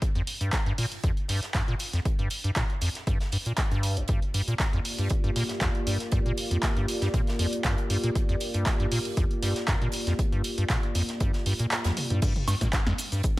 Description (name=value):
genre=acid house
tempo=118 BPM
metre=4/4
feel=swing 53% on 16ths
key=G minor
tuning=A4 = 438 Hz
part: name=electronic kick drum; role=drums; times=0.0-13.3 s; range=none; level=-27 LUFS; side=equal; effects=none
part: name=modern studio drum kit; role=drums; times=0.0-13.4 s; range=hi-hat, snare drum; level=-41 LUFS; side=right 2 dB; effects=sidechain pumping on hats, high-pass filter on hats, high-pass filter on snare, high-pass filter on room
part: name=punchy analog drum machine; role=drums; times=0.0-13.3 s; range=crash cymbal, handclaps, hi-hat, shaker, snare drum, toms, woodblock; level=-31 LUFS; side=equal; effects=none
part: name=acid bass, square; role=riff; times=0.2-13.2 s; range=G1 to Bb2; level=-29 LUFS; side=equal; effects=overdrive, analog chorus, cassette tape, sidechain pumping, tape echo
part: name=dark analog pad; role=sustained chords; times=4.5-12.2 s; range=Bb3 to D5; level=-33 LUFS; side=equal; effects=chorus, sidechain pumping
room=light reverb, digital ambience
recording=none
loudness=-24 LUFS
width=side -18 dB against mid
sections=0.0-12.2 A section; 12.2-13.4 B section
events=kick drops out 11.7-12.2; drum fill 11.8-12.2; drop 12.2-13.4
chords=0.0 Gm7; 12.2 N.C.